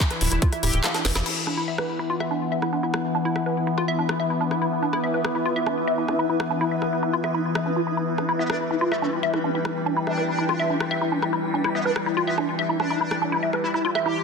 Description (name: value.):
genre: psychedelic trance.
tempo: 143 BPM.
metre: 4/4.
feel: straight.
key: E minor.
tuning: A4 = 440 Hz.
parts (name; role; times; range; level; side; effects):
overtone-sweeping drone; sustained chords; 0.1-14.2 s; E3 to E4; -27 LUFS; left 2 dB; chorus, built-in reverb, sidechain pumping.
woody wave-folded pluck; riff; 0.0-14.1 s; D4 to F5; -25 LUFS; moving between left 2 dB and right 4 dB; chorus, auto-pan, sidechain pumping, ping-pong delay.
electronic kick drum; drums; 0.0-0.5 s; none; -20 LUFS; equal; none.
garage drum kit; drums; 0.0-14.0 s; crash cymbal, handclaps, hi-hat, rim click, snare drum; -29 LUFS; left 1 dB; soft clipping on snare.
granular cloud pad; texture; 0.3-14.2 s; E4 to G5; -30 LUFS; equal; built-in reverb, sidechain pumping.
metallic wobble bass; second line; 0.2-0.9, 8.4-14.2 s; A3 to G4; -32 LUFS; left 2 dB; analog chorus, sidechain pumping, high-pass filter, ping-pong delay.
tight sequencer bass; bass; 0.2-1.2 s; D1 to F1; -24 LUFS; equal; none.
room: moderate lush hall reverb, RT60 1.7 s.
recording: dense, heavily limited modern master.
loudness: -21 LUFS.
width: side -5 dB against mid.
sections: 0.0-1.3 A section; 1.3-14.2 B section.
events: kick drops out 0.8-1.3; drum fill 0.9-1.3; band accent 1.2.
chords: 0.0 E5.